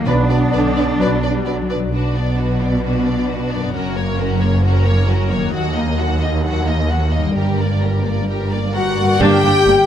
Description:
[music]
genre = cinematic, heroic adventure film score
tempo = 132 BPM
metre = 4/4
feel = straight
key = B harmonic minor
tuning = A4 = 441 Hz
[part]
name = mellow clarinet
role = second line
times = 0.0-1.7 s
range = B3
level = -24 LUFS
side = left 2 dB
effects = none
[part]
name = concert harp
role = arpeggios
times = 0.0-9.9 s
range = F#2 to D#5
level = -26 LUFS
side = left 10 dB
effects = none
[part]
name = warm studio cello section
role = bass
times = 0.0-9.8 s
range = D#2 to D4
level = -19 LUFS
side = right 2 dB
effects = none
[part]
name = warm symphonic violin section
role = melody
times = 0.1-9.9 s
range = A#4 to G5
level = -27 LUFS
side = left 2 dB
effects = none
[part]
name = rich symphonic violin section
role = second line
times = 0.1-9.9 s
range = D4 to G5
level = -26 LUFS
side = left 3 dB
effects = none
[part]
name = warm symphonic viola section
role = accompaniment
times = 0.1-9.8 s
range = D3 to D4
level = -25 LUFS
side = equal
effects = none
[part]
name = warm French horn section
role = sustained chords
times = 0.1-1.2, 8.7-9.9 s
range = F#3 to G4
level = -17 LUFS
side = left 3 dB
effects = none
[part]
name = dark trumpet section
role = stabs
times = 0.1-1.2 s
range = B4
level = -26 LUFS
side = right 1 dB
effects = none
[part]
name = clear symphonic double bass section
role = bass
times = 0.1-9.7 s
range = F#1 to D#2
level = -22 LUFS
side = right 2 dB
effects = none
[part]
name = timpani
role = percussion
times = 0.1-0.7, 3.7-4.4, 9.2-9.9 s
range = F#2 to B2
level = -25 LUFS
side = right 2 dB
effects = none
[part]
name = concert flute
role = second line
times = 8.7-9.9 s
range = F#5 to G5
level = -26 LUFS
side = left 3 dB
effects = none
[part]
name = warm oboe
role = second line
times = 8.7-9.9 s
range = F#4 to G4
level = -24 LUFS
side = right 3 dB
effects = none
[sound]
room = moderate scoring stage reverb, RT60 1.8 s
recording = none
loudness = -15 LUFS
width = side -10 dB against mid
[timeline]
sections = 0.0-1.9 A section; 1.9-9.2 B section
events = none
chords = 0.1 Bm; 3.7 F#; 5.5 D#m; 7.4 Gm

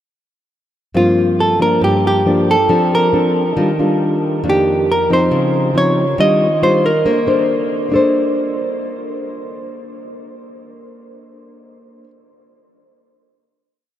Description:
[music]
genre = bossa nova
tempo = 138 BPM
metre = 4/4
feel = straight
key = Bb major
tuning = A4 = 440 Hz
[part]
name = nylon-string guitar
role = accompaniment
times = 0.9-12.1 s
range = F2 to C5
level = -16 LUFS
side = left 1 dB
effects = none
[part]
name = hollow-body jazz guitar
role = melody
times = 1.0-7.5 s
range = F4 to Eb5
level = -16 LUFS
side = right 1 dB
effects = none
[sound]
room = wet huge ambient reverb, RT60 8.7 s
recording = in a vast, echoing space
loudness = -13 LUFS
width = side -11 dB against mid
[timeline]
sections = 1.0-7.9 A section; 7.9-11.4 final chord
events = none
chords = 1.0 Gm7; 1.8 Gm9; 2.7 Bbmaj9/F; 3.6 Ebmaj9; 4.4 F13sus4; 5.3 Dbmaj9; 6.2 Ebmaj9; 7.1 Bbmaj9

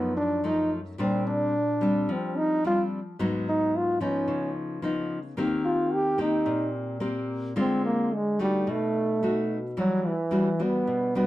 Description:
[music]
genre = bossa nova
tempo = 109 BPM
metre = 4/4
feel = straight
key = unclear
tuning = A4 = 441 Hz
[part]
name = warm trombone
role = melody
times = 0.0-11.3 s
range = E3 to G4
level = -25 LUFS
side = right 1 dB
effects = none
[part]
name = nylon-string guitar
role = accompaniment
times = 0.0-11.3 s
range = F#2 to G4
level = -28 LUFS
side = left 1 dB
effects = none
[sound]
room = moderate studio reverb, RT60 0.6 s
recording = dark, warm production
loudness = -24 LUFS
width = side -15 dB against mid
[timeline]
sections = 0.0-9.8 A section; 9.8-11.3 B section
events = trombone solo 0.0-9.8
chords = 0.0 B7#11 (rootless); 1.0 Bb69; 3.2 Abm7; 4.3 Db9; 5.4 Eb6; 7.6 Dm7b5; 8.7 B7; 9.8 Em9

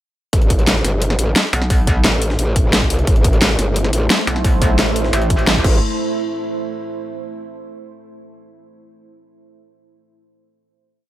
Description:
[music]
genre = dark technical drum and bass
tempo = 175 BPM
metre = 4/4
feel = straight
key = A minor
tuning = A4 = 440 Hz
[part]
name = growl bass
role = bass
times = 0.3-5.8 s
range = G1 to C2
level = -17 LUFS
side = equal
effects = chorus, sidechain pumping
[part]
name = breakbeat sampler-style drum kit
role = drums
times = 0.3-5.6 s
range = hi-hat, snare drum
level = -27 LUFS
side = equal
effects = none
[part]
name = dubstep drum kit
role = drums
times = 0.3-5.7 s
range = crash cymbal, hi-hat, snare drum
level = -18 LUFS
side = equal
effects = small room ambience
[part]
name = electronic kick drum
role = drums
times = 0.3-5.7 s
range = none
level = -16 LUFS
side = equal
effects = small room ambience
[part]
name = metallic wobble bass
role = bass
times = 1.5-2.0, 4.3-5.6 s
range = A1 to B1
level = -18 LUFS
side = equal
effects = distortion, chorus
[part]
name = deep dark ambient pad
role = sustained chords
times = 3.7-5.8 s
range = A3 to C5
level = -24 LUFS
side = right 2 dB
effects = chorus, built-in reverb, sidechain pumping
[sound]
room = digital ambience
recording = none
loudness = -14 LUFS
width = side -14 dB against mid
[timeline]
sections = 0.3-5.8 drop; 5.8-7.2 final hit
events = drop 0.3-5.8; band accent 5.5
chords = 0.3 Am; 5.8 N.C.

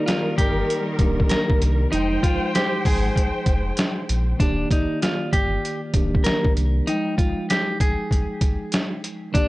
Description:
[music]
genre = hip hop, boom-bap hip-hop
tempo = 97 BPM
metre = 4/4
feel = swing 63% on 16ths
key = Eb major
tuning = A4 = 441 Hz
[part]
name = semi-hollow electric guitar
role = melody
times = 0.0-9.5 s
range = D4 to Bb4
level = -26 LUFS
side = equal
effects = high-pass filter, low-pass filter, tape echo
[part]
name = mellow tine electric piano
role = accompaniment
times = 0.0-9.5 s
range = Eb3 to G5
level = -28 LUFS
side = right 1 dB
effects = medium stereo tremolo, cassette tape, high-pass filter, low-pass filter
[part]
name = warm studio string section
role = stabs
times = 0.0-4.4 s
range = Eb3 to G5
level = -27 LUFS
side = left 1 dB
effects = high-pass filter, low-pass filter, tape echo
[part]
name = trip hop sampler-style drum kit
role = drums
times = 0.1-9.5 s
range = hi-hat, kick drum, snare drum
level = -21 LUFS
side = equal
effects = overdrive
[part]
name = saturated sub bass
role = bass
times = 0.4-6.8 s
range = D1 to C2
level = -23 LUFS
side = equal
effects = none
[sound]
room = digital ambience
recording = dry, gritty hardware recording, cassette tape, nothing above 10.7 kHz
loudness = -19 LUFS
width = side -19 dB against mid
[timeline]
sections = 0.0-4.4 A section; 4.4-9.5 B section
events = none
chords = 0.0 Ebmaj7; 1.9 Fm9; 4.4 Ebmaj7; 6.9 Fm9

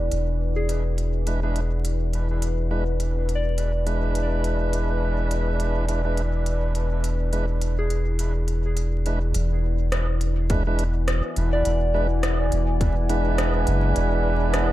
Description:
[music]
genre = ambient dub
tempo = 104 BPM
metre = 4/4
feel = swing 57% on 16ths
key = E mixolydian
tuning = A4 = 440 Hz
[part]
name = deep dark ambient pad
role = sustained chords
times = 0.0-14.7 s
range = E4 to G#5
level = -30 LUFS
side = left 2 dB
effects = chorus, built-in reverb
[part]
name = soft dub sub bass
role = bass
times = 0.0-14.7 s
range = E1 to F#1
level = -23 LUFS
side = equal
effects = none
[part]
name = organic electronic drum kit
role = drums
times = 0.1-14.7 s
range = hi-hat, rim click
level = -31 LUFS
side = equal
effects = none
[part]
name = soft synth bell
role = arpeggios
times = 0.6-14.7 s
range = G#4 to D5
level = -33 LUFS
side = left 1 dB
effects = chorus, phaser, dub echo
[part]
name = tonewheel organ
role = stabs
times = 1.3-14.7 s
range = G#3 to B4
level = -29 LUFS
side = right 2 dB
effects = overdrive, stopped rotary speaker, dub echo
[part]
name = electronic kick drum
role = drums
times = 10.5-12.9 s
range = none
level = -25 LUFS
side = equal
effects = none
[sound]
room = light reverb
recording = vinyl crackle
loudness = -21 LUFS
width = side -15 dB against mid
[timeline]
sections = 0.0-9.3 A section; 9.3-14.7 B section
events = none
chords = 0.0 E7

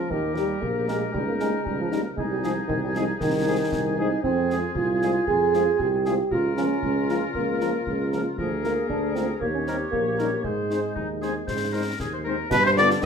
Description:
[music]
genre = military-style march for wind band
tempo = 116 BPM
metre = 2/4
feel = straight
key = Ab major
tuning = A4 = 440 Hz
[part]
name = mellow euphonium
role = second line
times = 0.0-13.1 s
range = B2 to Ab4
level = -26 LUFS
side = right 2 dB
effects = none
[part]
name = warm woodwind section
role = second line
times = 0.0-13.1 s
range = Eb4 to D5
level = -30 LUFS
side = left 3 dB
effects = none
[part]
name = warm tuba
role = bass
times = 0.1-13.1 s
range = Bb1 to Ab2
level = -28 LUFS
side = right 3 dB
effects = none
[part]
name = concert bass drum, concert snare drum and clash cymbals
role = drums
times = 0.1-13.1 s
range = none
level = -35 LUFS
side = left 2 dB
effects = none
[part]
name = clear cornet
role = melody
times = 0.4-12.9 s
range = Ab4 to D5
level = -28 LUFS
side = equal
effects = none
[part]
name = mellow French horn section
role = accompaniment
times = 0.4-12.9 s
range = F3 to G4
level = -31 LUFS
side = left 5 dB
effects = none
[part]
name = mellow hollow small flute group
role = second line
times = 12.5-13.1 s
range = B4 to Eb5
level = -30 LUFS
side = left 4 dB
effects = none
[sound]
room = moderate large studio reverb, RT60 0.9 s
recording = minimal, uncompressed stereo recording, faint mains hum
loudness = -22 LUFS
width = side -6 dB against mid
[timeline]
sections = 0.0-12.5 A section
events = none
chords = 0.1 Eb; 1.1 Eb7/Db; 2.2 Ab/C; 4.2 Fm; 6.3 Bbm/Db; 8.4 Bb7/D; 9.4 Eb7; 10.4 Ab; 12.5 G7

